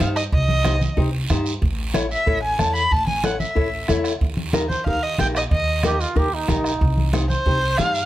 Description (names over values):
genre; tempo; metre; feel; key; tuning
latin, cumbia; 185 BPM; 4/4; straight; C dorian; A4 = 442 Hz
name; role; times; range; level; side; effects
nylon-string guitar; accompaniment; 0.0-8.0 s; Eb4 to C#5; -25 LUFS; left 2 dB; none
upright bass; bass; 0.0-8.0 s; A1 to G2; -24 LUFS; equal; none
bombo; percussion; 0.0-7.9 s; none; -24 LUFS; right 1 dB; none
congas; percussion; 0.0-7.9 s; none; -26 LUFS; equal; none
guiro; percussion; 0.0-8.1 s; none; -33 LUFS; right 5 dB; none
warm erhu; melody; 0.2-8.1 s; C5 to B5; -22 LUFS; equal; none
brilliant trombone; second line; 5.9-7.1 s; Eb4 to G4; -25 LUFS; right 3 dB; none
room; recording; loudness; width
light reverb; none; -18 LUFS; side -14 dB against mid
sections
0.0-8.1 A section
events
none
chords
0.0 Cm; 1.6 A; 4.2 Eb; 6.8 Cm